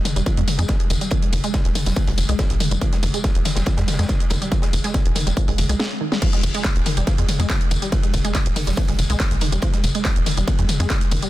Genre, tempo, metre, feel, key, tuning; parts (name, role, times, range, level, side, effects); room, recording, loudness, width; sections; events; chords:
driving peak-time techno; 141 BPM; 4/4; straight; F minor; A4 = 440 Hz
crunchy breakbeat drum kit; drums; 0.0-11.2 s; hi-hat, ride cymbal, snare drum; -35 LUFS; equal; high-pass filter on cymbals, high-pass filter on hats, high-pass filter on snare, high-pass filter on room
resonant blip pluck; riff; 0.1-11.3 s; Eb3 to Ab3; -27 LUFS; right 1 dB; chorus, sidechain pumping, tape echo
techno drum kit; drums; 0.1-11.3 s; crash cymbal, handclaps, hi-hat, ride cymbal, snare drum, tambourine, toms; -25 LUFS; left 1 dB; sidechain pumping on hats, sidechain pumping on toms, sidechain pumping on perc, sidechain pumping on cymbals
tight sequencer bass; bass; 0.2-11.2 s; Eb1 to F2; -21 LUFS; equal; tube saturation, sidechain pumping
electronic kick drum; drums; 0.3-11.0 s; -21 LUFS; equal; distortion
digital ambience; dense, heavily limited modern master; -18 LUFS; side -16 dB against mid
0.0-6.2 A section; 6.2-11.3 B section
break 5.8-6.2; drum fill 5.8-6.2; drop 6.2-11.3
0.0 Fm